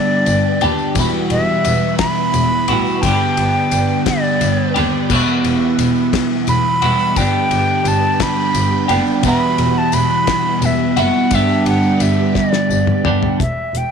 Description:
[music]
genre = psychedelic rock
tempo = 58 BPM (dotted quarters)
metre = 6/8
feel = straight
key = E minor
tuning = A4 = 440 Hz
[part]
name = breathy silver concert flute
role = melody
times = 0.0-13.9 s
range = D5 to B5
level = -19 LUFS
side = right 1 dB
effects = tape echo
[part]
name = phased string machine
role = sustained chords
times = 0.0-13.4 s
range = G3 to G5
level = -29 LUFS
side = right 14 dB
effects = ensemble chorus, phaser
[part]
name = twelve-string electric guitar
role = riff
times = 0.0-13.4 s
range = E2 to G4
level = -16 LUFS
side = right 1 dB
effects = phaser, double-tracked left and right
[part]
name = warm double bass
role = bass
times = 0.3-13.8 s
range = E1 to D#2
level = -21 LUFS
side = equal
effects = none
[part]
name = cloth-damped thuddy drum kit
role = drums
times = 0.3-13.9 s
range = crash cymbal, hi-hat, kick drum, ride cymbal, snare drum, toms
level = -23 LUFS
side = left 6 dB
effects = none
[part]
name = tambourine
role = percussion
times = 0.3-12.9 s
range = none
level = -32 LUFS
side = left 19 dB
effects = none
[sound]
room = light reverb, small room ambience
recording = 1960s-style stereo with parts hard left and right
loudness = -13 LUFS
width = side -6 dB against mid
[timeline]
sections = 0.0-13.4 A section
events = drum fill 12.4-13.4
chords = 0.0 G; 1.0 Emadd9; 3.0 G; 5.1 Emadd9; 7.2 G; 9.2 Emadd9; 11.3 G; 13.4 Em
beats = | 0.96 1.99 | 3.02 4.06 | 5.09 6.13 | 7.16 8.20 | 9.24 10.28 | 11.32 12.36 | 13.40

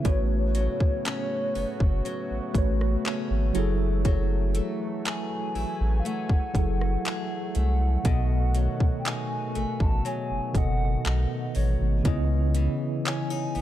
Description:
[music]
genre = contemporary R&B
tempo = 60 BPM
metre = 4/4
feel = straight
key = unclear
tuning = A4 = 440 Hz
[part]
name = hollow clarinet-like synth lead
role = melody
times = 0.0-13.6 s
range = C#5 to A5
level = -34 LUFS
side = equal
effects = chorus, ping-pong delay
[part]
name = mellow tine electric piano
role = accompaniment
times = 0.0-13.6 s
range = B2 to D#5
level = -30 LUFS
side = right 1 dB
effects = medium stereo tremolo
[part]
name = warm analog pad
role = sustained chords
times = 0.0-13.6 s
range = C#3 to G#5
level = -37 LUFS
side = right 3 dB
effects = chorus, sidechain pumping
[part]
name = picked steel-string acoustic guitar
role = arpeggios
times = 0.0-13.6 s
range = A2 to G#4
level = -36 LUFS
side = left 6 dB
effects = none
[part]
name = trap drum kit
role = drums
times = 0.0-13.6 s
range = handclaps, hi-hat, kick drum, rim click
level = -26 LUFS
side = equal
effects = none
[part]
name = saturated sub bass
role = bass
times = 0.1-13.6 s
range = F#1 to C#2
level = -25 LUFS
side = equal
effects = none
[sound]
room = digital ambience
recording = dark, warm production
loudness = -24 LUFS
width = side -13 dB against mid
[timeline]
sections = 0.0-13.6 A section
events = none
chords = 0.1 A69; 3.6 F#m9; 8.1 B7; 12.1 C#m9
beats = | 0.05 1.05 2.05 3.05 | 4.05 5.05 6.05 7.05 | 8.05 9.05 10.05 11.05 | 12.05 13.05

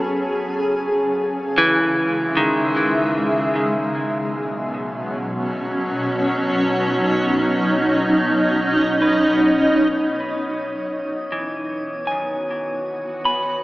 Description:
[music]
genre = ambient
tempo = free time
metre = none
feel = none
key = E major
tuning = A4 = 439 Hz
[part]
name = granular cloud pad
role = sustained chords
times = 0.0-13.6 s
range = B2 to E5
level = -19 LUFS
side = equal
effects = built-in reverb, shimmer reverb
[part]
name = clean electric guitar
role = arpeggios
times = 0.0-13.6 s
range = D#3 to B5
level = -22 LUFS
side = equal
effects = tape echo, shimmer reverb
[part]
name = glass harmonica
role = texture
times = 10.2-13.6 s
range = C#5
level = -28 LUFS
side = equal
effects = shimmer reverb
[sound]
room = wet cathedral reverb, RT60 6.9 s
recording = in a vast, echoing space, AM radio sound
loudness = -18 LUFS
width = side -18 dB against mid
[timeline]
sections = 0.0-9.9 A section; 9.9-13.6 B section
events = fade-in on ambient pad 0.0-9.9; fade-out on clean electric guitar 0.0-9.9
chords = 0.4 C#madd9; 3.6 Badd9; 9.9 Emaj7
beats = free time

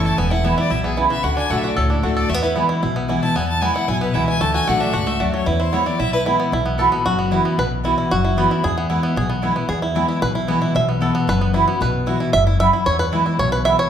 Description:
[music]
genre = bluegrass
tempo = 227 BPM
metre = 4/4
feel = straight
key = E mixolydian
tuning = A4 = 440 Hz
[part]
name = bluegrass banjo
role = melody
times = 0.0-13.9 s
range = E3 to E5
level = -22 LUFS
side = right 2 dB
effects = none
[part]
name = clear fiddle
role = second line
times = 0.0-6.2 s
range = E4 to A5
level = -24 LUFS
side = left 2 dB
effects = none
[part]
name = picked steel-string acoustic guitar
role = accompaniment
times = 0.0-13.9 s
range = E2 to F#4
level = -22 LUFS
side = left 3 dB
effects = none
[part]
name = upright bass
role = bass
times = 0.0-13.7 s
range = E1 to E2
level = -23 LUFS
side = equal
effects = none
[part]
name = mandolin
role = stabs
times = 0.4-13.7 s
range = A3 to G#5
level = -23 LUFS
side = right 4 dB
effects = none
[sound]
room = wet large studio reverb, RT60 1.3 s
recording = band playing live in one room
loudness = -16 LUFS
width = side -9 dB against mid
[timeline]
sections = 0.0-6.5 A section; 6.5-13.9 A section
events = fiddle solo 0.0-6.5; five-string banjo solo 6.5-13.9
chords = 0.2 E; 1.2 D; 2.3 E; 4.4 D; 5.5 E; 6.5 Bsus4; 8.6 E; 10.8 Bsus4; 12.9 E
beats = | 0.18 0.45 0.71 0.97 | 1.24 1.50 1.77 2.03 | 2.30 2.56 2.83 3.09 | 3.35 3.62 3.88 4.15 | 4.41 4.67 4.94 5.20 | 5.47 5.73 6.00 6.26 | 6.53 6.79 7.05 7.32 | 7.58 7.85 8.11 8.38 | 8.64 8.90 9.17 9.43 | 9.70 9.96 10.22 10.49 | 10.75 11.02 11.28 11.55 | 11.81 12.07 12.34 12.60 | 12.87 13.13 13.40 13.66

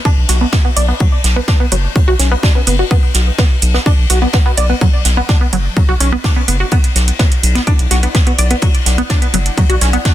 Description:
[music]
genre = melodic techno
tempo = 126 BPM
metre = 4/4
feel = straight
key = B minor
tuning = A4 = 441 Hz
[part]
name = jazz brush drum kit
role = drums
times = 0.0-10.1 s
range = ride cymbal, snare drum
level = -22 LUFS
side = left 2 dB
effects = high-pass filter on cymbals, soft clipping on snare, high-pass filter on snare, high-pass filter on room
[part]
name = warbly tape-like pad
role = texture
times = 0.0-10.1 s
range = D4 to A5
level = -33 LUFS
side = left 2 dB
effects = none
[part]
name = tight sequenced synth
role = arpeggios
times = 0.1-10.1 s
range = F#3 to D5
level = -18 LUFS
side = equal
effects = chorus, phaser, vintage 12-bit sampler grit, sidechain pumping, tape echo
[part]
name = electronic kick drum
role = drums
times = 0.1-10.1 s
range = none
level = -12 LUFS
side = equal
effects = none
[part]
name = round analog bass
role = bass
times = 0.2-10.0 s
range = F#1 to B1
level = -14 LUFS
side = equal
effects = sidechain pumping
[part]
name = electronic hi-hat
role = drums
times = 0.3-10.1 s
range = none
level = -17 LUFS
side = right 5 dB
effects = none
[sound]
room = small room ambience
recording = dense, heavily limited modern master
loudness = -10 LUFS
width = side -13 dB against mid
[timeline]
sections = 0.0-10.1 A section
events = none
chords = 0.0 Bm7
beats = 0.05 0.53 | 1.00 1.48 1.96 2.43 | 2.91 3.38 3.86 4.34 | 4.81 5.29 5.77 6.24 | 6.72 7.19 7.67 8.15 | 8.62 9.10 9.57 10.05

